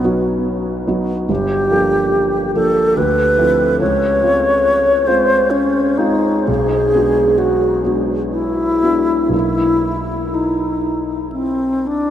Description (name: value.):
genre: classical, impressionist duo for alto flute and grand piano.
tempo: 52-73 BPM.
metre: 3/4.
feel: rubato.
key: unclear.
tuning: A4 = 440 Hz.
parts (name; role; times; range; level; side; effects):
alto flute; melody; 0.0-12.1 s; B3 to Db5; -15 LUFS; equal; none.
dark grand piano; accompaniment; 0.0-12.1 s; G1 to A4; -19 LUFS; equal; none.
room: wet huge ambient reverb, RT60 9.0 s.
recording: in a vast, echoing space.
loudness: -14 LUFS.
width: side -10 dB against mid.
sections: 0.0-12.1 A section.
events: none.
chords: 0.0 B; 1.3 Gm9; 3.0 Dm9; 3.8 Dbmaj7; 6.5 Bm6; 9.3 Bmaj7.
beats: 0.47 | 1.29 2.13 2.97 | 3.80 4.64 5.51 | 6.48 7.38 8.32 | 9.33 10.34 11.32.